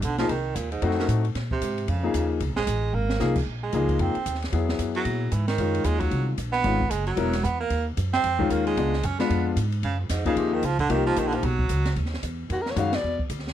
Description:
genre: jazz, small-group swing and bop.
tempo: 226 BPM.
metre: 4/4.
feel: swing 61% on 8ths.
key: Bb minor.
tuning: A4 = 441 Hz.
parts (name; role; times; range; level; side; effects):
clear baritone saxophone; second line; 0.0-13.2 s; Eb2 to Db4; -28 LUFS; right 6 dB; none.
upright bass; bass; 0.0-13.5 s; E1 to Bb2; -26 LUFS; right 1 dB; none.
open jazz drum kit; drums; 0.0-13.5 s; crash cymbal, hi-hat, kick drum, ride cymbal, snare drum; -33 LUFS; right 1 dB; none.
clear baby grand piano; accompaniment; 0.2-12.9 s; Eb3 to Bb4; -26 LUFS; left 6 dB; none.
mellow soprano saxophone; melody; 12.5-13.2 s; Gb4 to F5; -28 LUFS; left 3 dB; none.
room: studio ambience.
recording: dry, close 1970s-style studio recording.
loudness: -22 LUFS.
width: side -11 dB against mid.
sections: 0.0-3.5 A section; 3.5-12.0 A section; 12.0-13.5 B section.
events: baritone saxophone solo 0.0-12.0; drum fill 2.9; band accent 12.9.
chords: 0.3 Cm7; 0.8 F7b9; 1.4 Bb7(no3); 3.5 Bbm11; 4.5 Eadd9; 5.6 Gb6; 6.6 Fm7b5; 7.2 Esus2; 7.7 Ebm9; 8.8 Db7b9; 9.8 Gbmaj7; 10.9 Cm7; 11.4 Bsus2; 12.0 Ebm7; 13.0 E7(no3).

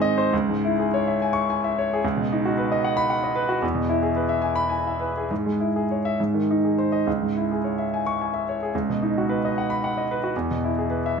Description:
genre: classical, romantic character piece for solo piano.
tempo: 61-77 BPM (dotted quarters).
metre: 6/8.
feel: rubato.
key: C# minor.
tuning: A4 = 440 Hz.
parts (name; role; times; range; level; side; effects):
clear grand piano; solo; 0.0-11.2 s; C#2 to C#6; -21 LUFS; equal; none.
room: moderate recital hall reverb, RT60 1.5 s.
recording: minimal, uncompressed stereo recording.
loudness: -21 LUFS.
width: side -6 dB against mid.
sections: 0.3-11.2 A section.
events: none.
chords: 0.3 C#m; 2.0 B/C#; 3.6 E; 5.3 C#m/G#; 6.2 G#; 7.1 C#m; 8.7 B/C#; 10.3 E.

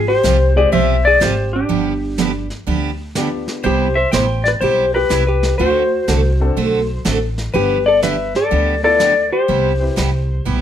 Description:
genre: country, western swing.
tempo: 123 BPM.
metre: 4/4.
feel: swing 66% on 8ths.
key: C major.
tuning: A4 = 442 Hz.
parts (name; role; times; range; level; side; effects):
clean lap steel guitar; melody; 0.0-10.6 s; G4 to G5; -16 LUFS; left 4 dB; none.
hollow-body jazz guitar; second line; 0.0-10.6 s; D4 to C5; -22 LUFS; right 5 dB; none.
upright bass; bass; 0.0-10.6 s; G1 to D2; -19 LUFS; equal; none.
picked steel-string acoustic guitar; accompaniment; 0.2-10.6 s; C3 to A4; -21 LUFS; right 6 dB; none.
vintage brush drum kit; drums; 0.2-10.6 s; brushed snare drum, hi-hat, snare drum; -26 LUFS; equal; none.
warm upright piano; accompaniment; 0.6-10.0 s; Ab3 to B4; -24 LUFS; left 4 dB; none.
room: moderate studio reverb, RT60 0.7 s.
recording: none.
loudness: -14 LUFS.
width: side -10 dB against mid.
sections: 0.0-10.6 A section.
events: none.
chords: 0.0 Fmadd9/Ab; 1.7 G7; 3.6 Cmaj7; 5.6 D7; 7.5 G9; 9.5 Cmaj7.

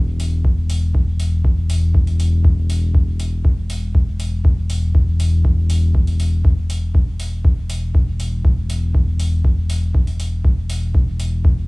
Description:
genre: dub techno.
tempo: 120 BPM.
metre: 4/4.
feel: straight.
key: unclear.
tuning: A4 = 439 Hz.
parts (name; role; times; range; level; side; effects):
round analog bass; bass; 0.0-11.7 s; E1; -19 LUFS; left 1 dB; sidechain pumping.
electronic hi-hat; drums; 0.2-11.3 s; none; -35 LUFS; equal; cassette tape.
electronic kick drum; drums; 0.4-11.5 s; none; -16 LUFS; equal; cassette tape.
room: little or no reverb.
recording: home recording on cassette, small room ambience.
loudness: -15 LUFS.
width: side -25 dB against mid.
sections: 0.0-11.7 A section.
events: none.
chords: none.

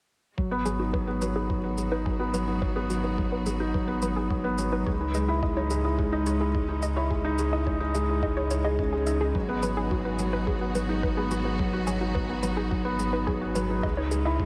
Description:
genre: piano and strings electronica.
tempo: 107 BPM.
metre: 4/4.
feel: straight.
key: G# minor.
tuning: A4 = 440 Hz.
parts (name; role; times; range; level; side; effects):
clear studio string section; sustained chords; 0.4-14.5 s; D#3 to F#4; -44 LUFS; equal; none.
felt-muted upright piano; riff; 0.4-14.5 s; F#3 to G#4; -30 LUFS; equal; analog delay.
warm sub bass; bass; 0.4-14.5 s; G#1 to C#2; -33 LUFS; equal; tube saturation, sidechain pumping.
electronic kick drum; drums; 0.4-14.5 s; none; -33 LUFS; equal; none.
analog pluck; arpeggios; 0.5-14.3 s; F#4 to E5; -37 LUFS; equal; chorus, sidechain pumping, analog delay.
shaker; drums; 0.7-14.2 s; none; -46 LUFS; equal; overdrive.
room: wet cathedral reverb, RT60 6.1 s.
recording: dreamy mix soaked in reverb.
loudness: -27 LUFS.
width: mono.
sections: 0.4-14.5 A section.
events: fade-in on string section 0.4-14.5; filter sweep on synth arpeggio sound 0.4-14.5.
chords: 0.4 G#m7; 4.9 C#madd9; 9.4 G#m7; 13.8 C#madd9.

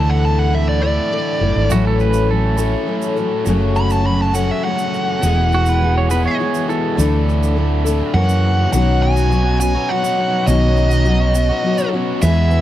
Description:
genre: folk rock and heartland rock.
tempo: 103 BPM.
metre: 3/4.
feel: straight.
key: A major, B major from 8.7 s.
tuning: A4 = 440 Hz.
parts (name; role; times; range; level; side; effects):
bluesy overdriven lead guitar; melody; 0.0-12.6 s; D5 to B5; -20 LUFS; right 1 dB; distortion.
picked steel-string acoustic guitar; accompaniment; 0.0-12.6 s; F#2 to A#4; -20 LUFS; left 5 dB; none.
biting overdriven guitar; riff; 0.0-12.6 s; E2 to G#4; -22 LUFS; right 2 dB; none.
hollow-body short-scale fingered electric bass; bass; 0.0-12.6 s; E1 to F#2; -16 LUFS; right 1 dB; none.
pedal steel guitar; second line; 1.7-8.1 s; F#4 to C#5; -25 LUFS; right 5 dB; none.
tube shaker; percussion; 1.7-12.6 s; none; -33 LUFS; right 9 dB; none.
room: studio reverb.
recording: dry, close 1970s-style studio recording.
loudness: -14 LUFS.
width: side -13 dB against mid.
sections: 0.0-8.7 A section; 8.7-12.6 B section.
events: lead electric guitar solo 0.0-8.7.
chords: 0.0 Dsus2; 1.7 A6; 3.5 F#m; 5.2 E; 7.0 Dsus2; 8.1 F#7; 8.7 Badd9.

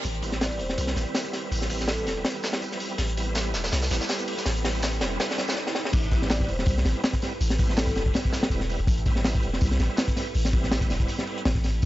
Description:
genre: drum and bass, jungle.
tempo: 163 BPM.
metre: 4/4.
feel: swing 54% on 16ths.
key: A minor.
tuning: A4 = 440 Hz.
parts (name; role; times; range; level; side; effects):
long sustained 808-style bass; bass; 0.0-11.9 s; E1 to C2; -27 LUFS; equal; none.
crunchy breakbeat drum kit; drums; 0.0-11.9 s; crash cymbal, hi-hat, kick drum, snare drum; -26 LUFS; equal; high-pass filter on kick, high-pass filter on hats, high-pass filter on cymbals, high-pass filter on snare, high-pass filter on room.
crunchy breakbeat drum kit; drums; 0.0-11.9 s; hi-hat, snare drum, tambourine; -35 LUFS; equal; high-pass filter on hats, high-pass filter on snare, high-pass filter on perc, high-pass filter on room.
reverse cymbal and riser; sound effects; 0.0-5.9 s; none; -40 LUFS; right 1 dB; none.
bright tonewheel organ; stabs; 0.2-11.4 s; G3 to E4; -33 LUFS; right 3 dB; overdrive, chorus vibrato, fast rotary speaker, vintage 12-bit sampler grit, low-pass filter, dub echo.
vibraphone with soft mallets; melody; 0.4-2.0, 6.3-7.9 s; A4 to D5; -38 LUFS; left 1 dB; low-pass filter, dub echo.
room: light reverb, small room ambience.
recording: dry, gritty hardware recording, nothing above 7.8 kHz.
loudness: -23 LUFS.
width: side -16 dB against mid.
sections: 0.0-5.9 A section; 5.9-11.9 B section.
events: build-up 0.0-5.9; drum fill 3.0-5.6, 5.6-5.9; drop 5.9-11.9.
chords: 0.0 Am9.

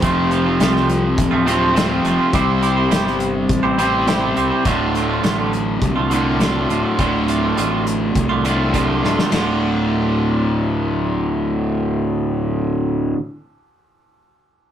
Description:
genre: quiet-loud alternative rock.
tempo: 103 BPM.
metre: 4/4.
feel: straight.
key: D minor.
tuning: A4 = 440 Hz.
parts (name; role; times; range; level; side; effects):
twangy electric guitar; arpeggios; 0.0-13.2 s; D2 to C5; -21 LUFS; right 3 dB; vibrato effect.
cranked stack guitar; riff; 0.0-13.2 s; D2 to C4; -19 LUFS; left 1 dB; overdrive.
fuzz fingered electric bass; bass; 0.0-13.1 s; D1 to C2; -23 LUFS; equal; overdrive.
loose indie drum kit; drums; 0.0-9.5 s; hi-hat, kick drum, ride cymbal, snare drum; -23 LUFS; equal; none.
room: wet small room reverb, RT60 0.5 s.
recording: rough rehearsal-room recording.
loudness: -16 LUFS.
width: side -10 dB against mid.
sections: 0.0-9.3 A section; 9.3-11.7 B section.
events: drum fill 9.0.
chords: 0.0 F; 2.3 C; 4.7 Dm.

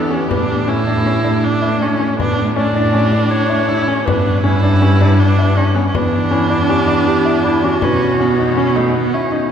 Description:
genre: contemporary instrumental, chamber music in an uneven meter.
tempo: 160 BPM.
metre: 5/4.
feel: straight.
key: unclear.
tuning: A4 = 440 Hz.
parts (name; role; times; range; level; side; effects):
dark clarinet; melody; 0.0-9.3 s; E4 to D5; -21 LUFS; left 1 dB; none.
rich viola; second line; 0.0-9.5 s; A3 to E4; -19 LUFS; right 2 dB; none.
clear studio string section; sustained chords; 0.0-9.5 s; D3 to F#5; -27 LUFS; equal; none.
warm baby grand piano; arpeggios; 0.0-9.4 s; B3 to E4; -20 LUFS; left 3 dB; none.
rich cello; bass; 0.0-9.5 s; E2 to B2; -16 LUFS; right 1 dB; none.
frame drum; percussion; 0.3-9.4 s; none; -26 LUFS; left 2 dB; none.
room: wet cathedral reverb, RT60 5.1 s.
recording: recorded in a church or concert hall.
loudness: -12 LUFS.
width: side -8 dB against mid.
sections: 0.0-9.5 A section.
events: none.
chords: 0.3 A7sus4; 4.1 Gmaj7; 6.0 Em7; 7.8 Badd9.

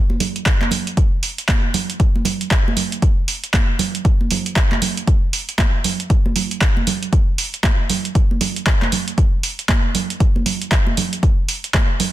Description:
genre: house.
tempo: 117 BPM.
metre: 4/4.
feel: swing 61% on 16ths.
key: none.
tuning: none.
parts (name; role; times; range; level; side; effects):
congas; percussion; 0.1-12.1 s; none; -24 LUFS; right 5 dB; sidechain pumping on perc.
punchy analog drum machine; drums; 0.2-12.1 s; handclaps, hi-hat; -21 LUFS; right 1 dB; none.
electronic kick drum; drums; 0.5-11.9 s; none; -16 LUFS; equal; none.
room: little or no reverb.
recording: dense, heavily limited modern master.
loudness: -16 LUFS.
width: side -14 dB against mid.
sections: 0.0-12.1 A section.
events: none.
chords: none.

